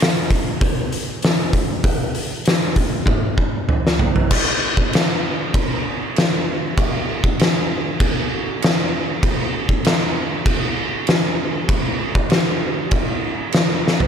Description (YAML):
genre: metal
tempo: 98 BPM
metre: 4/4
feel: straight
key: none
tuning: none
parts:
  - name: oversized low-tuned drum kit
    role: drums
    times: 0.0-14.1 s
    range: crash cymbal, hi-hat, kick drum, snare drum, toms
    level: -17 LUFS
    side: equal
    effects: none
room: little or no reverb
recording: none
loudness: -17 LUFS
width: side -8 dB against mid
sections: 0.0-4.3 A section; 4.3-14.1 B section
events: drum fill 3.1-4.3, 13.8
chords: none